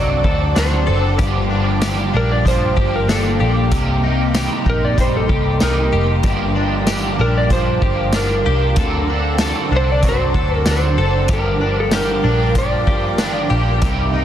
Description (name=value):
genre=dream pop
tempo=95 BPM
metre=4/4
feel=straight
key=G minor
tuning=A4 = 439 Hz
part: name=electric slide guitar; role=melody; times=0.0-13.5 s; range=A4 to D5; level=-22 LUFS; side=equal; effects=digital delay
part: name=electric guitar at the edge of break-up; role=accompaniment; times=0.0-14.2 s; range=G2 to A4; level=-24 LUFS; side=right 5 dB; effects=harmonic tremolo, ensemble chorus
part: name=ethereal airy pad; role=sustained chords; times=0.0-14.2 s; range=Bb3 to D6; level=-26 LUFS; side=right 1 dB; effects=ensemble chorus, built-in reverb
part: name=direct-recorded clean electric guitar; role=arpeggios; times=0.0-14.2 s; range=G2 to A4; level=-23 LUFS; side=left 5 dB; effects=analog chorus, digital delay
part: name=vintage muted picked electric bass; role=bass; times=0.0-14.2 s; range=F1 to D2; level=-19 LUFS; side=equal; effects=none
part: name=vintage drum kit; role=drums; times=0.2-14.0 s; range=hi-hat, kick drum, snare drum, tambourine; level=-20 LUFS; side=equal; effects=none
room=light reverb, small room ambience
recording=dense, heavily limited modern master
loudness=-14 LUFS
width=side -10 dB against mid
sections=0.0-14.2 A section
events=none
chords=0.0 D7; 1.2 Gm7; 3.7 Cm7; 6.2 Gm7; 8.8 D7; 11.3 Gm7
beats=0.56 | 1.19 1.82 2.45 3.08 | 3.72 4.35 4.98 5.61 | 6.24 6.87 7.51 8.14 | 8.77 9.40 10.03 10.66 | 11.29 11.93 12.56 13.19 | 13.82